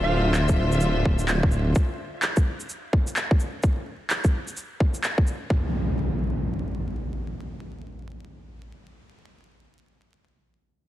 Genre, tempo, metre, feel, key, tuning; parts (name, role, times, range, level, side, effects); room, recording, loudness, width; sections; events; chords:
future garage; 128 BPM; 4/4; swing 61% on 16ths; D minor; A4 = 442 Hz
bright chamber string section; sustained chords; 0.0-1.8 s; D3 to E5; -29 LUFS; left 1 dB; sidechain pumping
swelling detuned saw bass; bass; 0.0-1.7 s; D1; -22 LUFS; equal; tube saturation, sidechain pumping
downlifter and impact; sound effects; 0.0-1.8, 5.5-10.2 s; -30 LUFS; equal
electronic handclaps and shaker; drums; 0.3-5.4 s; -28 LUFS; equal; overdrive
electronic kick drum; drums; 0.5-5.6 s; -22 LUFS; equal; overdrive
light reverb; dense, heavily limited modern master, vinyl crackle; -22 LUFS; side -14 dB against mid
0.0-5.5 A section; 5.5-9.3 B section
0.0 Dm7; 5.5 N.C.